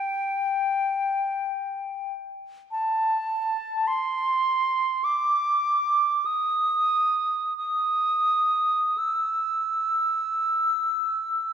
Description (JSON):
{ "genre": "classical, free, expressive piece for unaccompanied flute", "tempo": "free time", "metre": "none", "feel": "none", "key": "E minor", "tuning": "A4 = 440 Hz", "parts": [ { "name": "concert flute", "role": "solo", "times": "0.0-11.5 s", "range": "G5 to E6", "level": "-22 LUFS", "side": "right 1 dB", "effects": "none" } ], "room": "wet concert hall reverb, RT60 2.0 s", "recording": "dark, warm production", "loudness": "-22 LUFS", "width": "side -8 dB against mid", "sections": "0.0-11.5 A section", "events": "none", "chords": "none" }